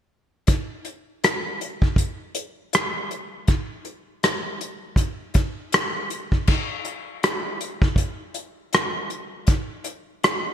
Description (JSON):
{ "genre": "R&B", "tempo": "80 BPM", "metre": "4/4", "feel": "swing 59% on 16ths", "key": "none", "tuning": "none", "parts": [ { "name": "unplugged drum kit", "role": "drums", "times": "0.5-10.4 s", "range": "crash cymbal, hi-hat, kick drum, rim click", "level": "-21 LUFS", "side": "equal", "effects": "gated reverb" } ], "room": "light reverb", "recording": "bright 1980s-style digital production", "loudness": "-22 LUFS", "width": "side -9 dB against mid", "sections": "0.5-6.5 A section; 6.5-10.5 B section", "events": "none", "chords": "none" }